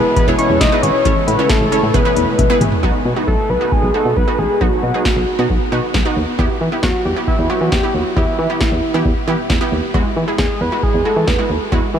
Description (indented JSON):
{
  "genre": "synth-pop",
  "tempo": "135 BPM",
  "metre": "4/4",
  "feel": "straight",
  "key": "B mixolydian",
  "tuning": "A4 = 436 Hz",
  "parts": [
    { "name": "fat analog lead", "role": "melody", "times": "0.0-11.5 s", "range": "E4 to D#5", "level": "-19 LUFS", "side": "equal", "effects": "chorus, tape echo" },
    { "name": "wide unison pluck", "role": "accompaniment", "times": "0.0-12.0 s", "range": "G#3 to C#5", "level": "-21 LUFS", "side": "right 2 dB", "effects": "wide subtle chorus" },
    { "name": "sweeping resonant pad", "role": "sustained chords", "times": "0.0-2.8 s", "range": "B2 to E4", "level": "-23 LUFS", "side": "equal", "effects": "chorus" },
    { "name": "soft round pluck", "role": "arpeggios", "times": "0.0-2.8 s", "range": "E3 to C#6", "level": "-26 LUFS", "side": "left 6 dB", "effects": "none" },
    { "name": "solid FM bass", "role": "bass", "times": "0.0-12.0 s", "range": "E1 to E3", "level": "-19 LUFS", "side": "equal", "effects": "none" },
    { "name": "electro analog drum machine", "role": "drums", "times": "0.2-11.8 s", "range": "hi-hat, kick drum, snare drum, toms", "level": "-19 LUFS", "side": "equal", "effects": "none" }
  ],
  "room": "moderate huge ambient reverb, RT60 7.4 s",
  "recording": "dreamy mix soaked in reverb",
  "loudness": "-13 LUFS",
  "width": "side -8 dB against mid",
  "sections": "0.0-2.8 A section; 2.8-12.0 B section",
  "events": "drum fill 2.4-2.8",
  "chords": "0.0 E; 1.1 A; 1.9 E; 2.8 B; 6.4 Em; 9.9 Eadd9"
}